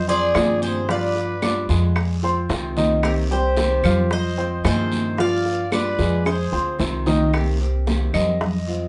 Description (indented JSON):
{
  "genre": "latin, Cuban son and guajira",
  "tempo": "112 BPM",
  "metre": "4/4",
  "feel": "straight",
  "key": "C minor",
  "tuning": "A4 = 440 Hz",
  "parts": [
    { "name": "Cuban tres", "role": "melody", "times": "0.0-6.8 s", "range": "Bb4 to F5", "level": "-27 LUFS", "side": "equal", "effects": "none" },
    { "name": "growling trumpet", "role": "second line", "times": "0.0-6.8 s", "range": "G4 to D5", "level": "-34 LUFS", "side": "equal", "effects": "none" },
    { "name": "upright bass", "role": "bass", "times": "0.0-8.9 s", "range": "C2 to G2", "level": "-25 LUFS", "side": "equal", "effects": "none" },
    { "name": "nylon-string guitar", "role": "accompaniment", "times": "0.1-8.9 s", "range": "C3 to G4", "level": "-31 LUFS", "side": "equal", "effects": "none" },
    { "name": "clear grand piano", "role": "arpeggios", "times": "0.1-8.9 s", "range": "Eb3 to D6", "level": "-27 LUFS", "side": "equal", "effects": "none" },
    { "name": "congas", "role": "percussion", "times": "0.1-8.9 s", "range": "none", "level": "-29 LUFS", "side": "equal", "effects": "none" },
    { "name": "bongos", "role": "percussion", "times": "0.3-8.7 s", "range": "none", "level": "-30 LUFS", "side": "equal", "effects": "none" },
    { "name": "claves", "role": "percussion", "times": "0.3-8.4 s", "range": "none", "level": "-34 LUFS", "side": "equal", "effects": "none" },
    { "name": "guiro", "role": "percussion", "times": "0.4-8.9 s", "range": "none", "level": "-37 LUFS", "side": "equal", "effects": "none" }
  ],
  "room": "wet studio reverb, RT60 0.5 s",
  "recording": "band playing live in one room, nothing above 10.7 kHz",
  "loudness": "-21 LUFS",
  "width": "mono",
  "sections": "0.0-7.3 A section; 7.3-8.9 B section",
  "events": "drum fill 6.3-7.3; grand piano solo 7.3-8.9",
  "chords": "0.0 Fm7; 0.9 G7; 2.0 Fm7; 3.0 Cm7; 4.1 Fm7; 5.2 G7; 6.3 Fm7; 7.3 Cm7",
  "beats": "0.35 | 0.89 1.43 1.96 2.50 | 3.04 3.57 4.11 4.65 | 5.19 5.72 6.26 6.80 | 7.34 7.88 8.41"
}